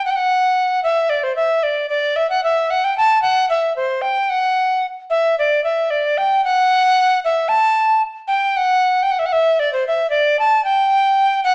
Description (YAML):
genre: medieval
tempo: 113 BPM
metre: 2/4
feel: straight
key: unclear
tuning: A4 = 439 Hz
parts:
  - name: breathy bright alto recorder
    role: solo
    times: 0.0-11.5 s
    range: C5 to A5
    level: -14 LUFS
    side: equal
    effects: none
room: wet large studio reverb, RT60 1.0 s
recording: band playing live in one room, small speaker sound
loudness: -14 LUFS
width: side -32 dB against mid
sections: 0.1-8.6 A section; 8.6-11.5 A section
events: none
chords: none